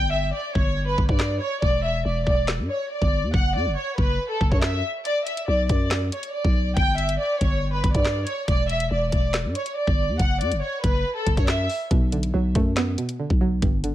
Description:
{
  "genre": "hip hop, drill",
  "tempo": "140 BPM",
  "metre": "4/4",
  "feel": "half-time",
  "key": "B minor",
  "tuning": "A4 = 440 Hz",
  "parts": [
    { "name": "warm studio violin section", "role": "melody", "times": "0.0-11.7 s", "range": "A4 to G5", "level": "-25 LUFS", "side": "equal", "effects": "low-pass filter" },
    { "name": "growling 808-style bass", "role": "bass", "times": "0.0-13.9 s", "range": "E1 to G2", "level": "-25 LUFS", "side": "equal", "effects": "none" },
    { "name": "drill drum kit", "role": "drums", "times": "0.6-13.9 s", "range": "handclaps, hi-hat, kick drum, rim click, snare drum", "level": "-23 LUFS", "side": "equal", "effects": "vintage 12-bit sampler grit" },
    { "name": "string-like resonator pluck", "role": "accompaniment", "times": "11.9-13.9 s", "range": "G2 to B3", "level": "-26 LUFS", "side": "right 3 dB", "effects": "chorus, low-pass filter" }
  ],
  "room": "light reverb, digital ambience",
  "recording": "none",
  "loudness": "-20 LUFS",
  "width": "side -13 dB against mid",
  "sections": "0.0-13.9 A section",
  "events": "break 0.0-5.1; kick muted 5.1-5.5",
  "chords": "0.0 G5; 1.6 Em7; 3.3 N.C.; 5.1 Bm; 6.8 G5; 8.5 Em7; 10.2 N.C.; 11.9 Bm7"
}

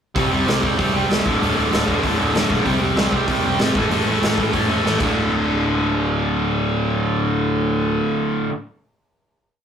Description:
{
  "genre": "punk rock",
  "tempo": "192 BPM",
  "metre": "4/4",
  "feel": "straight",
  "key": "unclear",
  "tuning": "A4 = 438 Hz",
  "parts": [
    { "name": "distorted electric guitar", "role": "riff", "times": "0.1-8.5 s", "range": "D2 to C4", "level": "-21 LUFS", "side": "right 4 dB", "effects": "distortion" },
    { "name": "distorted electric guitar", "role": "riff", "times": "0.2-8.5 s", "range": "D2 to C4", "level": "-22 LUFS", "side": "left 4 dB", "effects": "distortion" },
    { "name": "fuzz picked electric bass", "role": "bass", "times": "0.2-8.0 s", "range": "D1 to C2", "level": "-26 LUFS", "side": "left 1 dB", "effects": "overdrive" },
    { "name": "raw garage drum kit", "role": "drums", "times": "0.2-5.1 s", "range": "crash cymbal, hi-hat, kick drum, snare drum", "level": "-22 LUFS", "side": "equal", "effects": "none" }
  ],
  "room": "moderate studio reverb, RT60 0.5 s",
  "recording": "rough rehearsal-room recording, tube saturation",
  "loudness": "-17 LUFS",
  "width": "side -8 dB against mid",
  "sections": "0.2-5.1 verse; 5.1-7.7 final hit",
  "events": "drum fill 4.8-5.1",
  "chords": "0.2 C5; 1.2 D5; 2.6 C5; 3.7 A5; 5.0 D5"
}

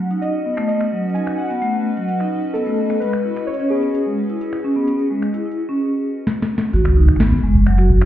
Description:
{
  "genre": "IDM",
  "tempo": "129 BPM",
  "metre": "4/4",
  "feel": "straight",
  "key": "unclear",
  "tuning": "A4 = 439 Hz",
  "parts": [
    { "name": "warbly lo-fi synth keys", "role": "melody", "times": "0.0-6.2 s", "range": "G#4 to G#5", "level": "-24 LUFS", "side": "equal", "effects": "chorus, digital delay" },
    { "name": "icy glass pad", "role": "sustained chords", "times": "0.0-5.8 s", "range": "C#4 to D#5", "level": "-29 LUFS", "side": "left 1 dB", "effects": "chorus, built-in reverb" },
    { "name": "vibraphone with medium hard mallets", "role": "arpeggios", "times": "0.1-8.1 s", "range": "F#3 to F#4", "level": "-20 LUFS", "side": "equal", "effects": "vintage 12-bit sampler grit, digital delay" },
    { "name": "booming analog drum machine", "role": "drums", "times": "0.1-8.1 s", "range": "finger snaps, hi-hat, snare drum", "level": "-23 LUFS", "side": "left 1 dB", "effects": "low-pass filter on hats, low-pass filter on snare, digital delay" },
    { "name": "warm sub bass", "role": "bass", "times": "6.7-8.1 s", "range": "F#1 to G#1", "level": "-14 LUFS", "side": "equal", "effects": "tube saturation" },
    { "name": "electronic kick drum", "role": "drums", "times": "6.9-8.0 s", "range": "none", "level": "-17 LUFS", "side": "equal", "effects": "none" }
  ],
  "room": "moderate digital room reverb, RT60 1.1 s",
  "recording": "heard muffled through a wall, club reverb, EQ",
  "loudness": "-16 LUFS",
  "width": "side -12 dB against mid",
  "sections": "0.0-6.7 A section; 6.7-8.1 B section",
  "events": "filter sweep on drum 0.0-6.7; filter sweep on vibraphone 0.0-6.7; drum fill 6.3-6.7",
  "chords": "0.0 B; 3.0 C#7(no3); 6.7 G#7(no3)"
}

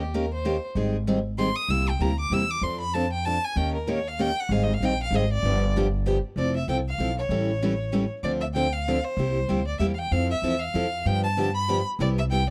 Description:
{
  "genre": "acoustic string swing (jazz manouche)",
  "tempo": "192 BPM",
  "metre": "3/4",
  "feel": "swing 59% on 8ths",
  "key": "C major",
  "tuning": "A4 = 440 Hz",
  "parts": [
    { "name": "rich violin", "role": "melody", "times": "0.0-12.5 s", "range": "G4 to E6", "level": "-31 LUFS", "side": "equal", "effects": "none" },
    { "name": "picked steel-string acoustic guitar", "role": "accompaniment", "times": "0.0-12.4 s", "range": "C3 to Bb4", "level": "-29 LUFS", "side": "equal", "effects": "none" },
    { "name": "upright bass", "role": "bass", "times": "0.0-12.5 s", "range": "F1 to G2", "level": "-30 LUFS", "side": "equal", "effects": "none" }
  ],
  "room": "small room ambience",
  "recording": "dry, close 1970s-style studio recording",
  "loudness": "-25 LUFS",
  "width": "mono",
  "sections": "0.0-6.4 A section; 6.4-12.5 B section",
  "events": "violin solo 0.0-6.4",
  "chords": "0.0 Eb7; 0.8 Abmaj7; 1.7 C7; 2.6 F6; 3.6 Eb7; 4.5 Abmaj7; 5.4 G7; 6.4 Fmaj7; 7.3 A7; 8.2 Dm7; 9.2 C7; 10.1 Fmaj7; 11.1 G7; 12.0 Cmaj7"
}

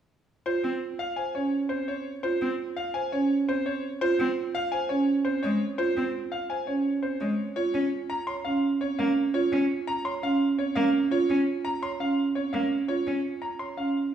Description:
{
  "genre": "classical, minimalist pattern music",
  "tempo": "169 BPM",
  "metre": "5/4",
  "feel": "straight",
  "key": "Db major",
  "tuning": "A4 = 440 Hz",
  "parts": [
    { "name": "bright concert grand piano", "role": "melody", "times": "0.5-14.0 s", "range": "C5 to C6", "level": "-32 LUFS", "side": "left 4 dB", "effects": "none" },
    { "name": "marimba with soft mallets", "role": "arpeggios", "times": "0.5-14.0 s", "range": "C4 to Db5", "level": "-26 LUFS", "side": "right 4 dB", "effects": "none" },
    { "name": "rich cello", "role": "accompaniment", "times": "0.6-13.2 s", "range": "Ab3 to Db4", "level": "-30 LUFS", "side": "left 2 dB", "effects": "none" }
  ],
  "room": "moderate scoring stage reverb, RT60 1.6 s",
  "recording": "recorded in a church or concert hall",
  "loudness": "-25 LUFS",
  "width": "side -9 dB against mid",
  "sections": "0.5-14.1 A section",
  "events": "none",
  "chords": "0.5 Db; 7.6 Bbm (rootless)"
}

